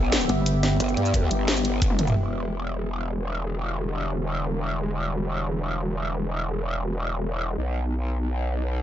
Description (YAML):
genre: dark technical drum and bass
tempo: free time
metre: none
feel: none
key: E minor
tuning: A4 = 440 Hz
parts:
  - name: deep dark ambient pad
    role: sustained chords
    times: 0.0-8.8 s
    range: B3 to E5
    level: -31 LUFS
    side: equal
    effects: chorus, built-in reverb, sidechain pumping
  - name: growl bass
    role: bass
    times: 0.0-8.8 s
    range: E1 to G2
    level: -26 LUFS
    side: equal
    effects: chorus, tube saturation
  - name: drum and bass drum kit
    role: drums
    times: 0.1-2.2 s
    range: crash cymbal, hi-hat, rim click, shaker, snare drum, toms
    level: -25 LUFS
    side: equal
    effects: low-pass filter on snare, studio reverb, low-pass filter on hats, low-pass filter on perc, low-pass filter on toms, low-pass filter on cymbals
  - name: pulsing pluck wobble bass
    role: bass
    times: 0.3-0.8 s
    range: G1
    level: -22 LUFS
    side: equal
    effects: chorus
  - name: electronic kick drum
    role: drums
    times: 1.1-1.9 s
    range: none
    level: -23 LUFS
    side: equal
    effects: studio reverb
room: little or no reverb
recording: nothing above 7.8 kHz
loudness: -23 LUFS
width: side -11 dB against mid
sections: 0.0-2.2 A section; 2.2-8.8 B section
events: drum fill 1.9; filter sweep on ambient pad 2.2-8.8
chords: 0.0 G6; 2.2 Em7; 7.6 B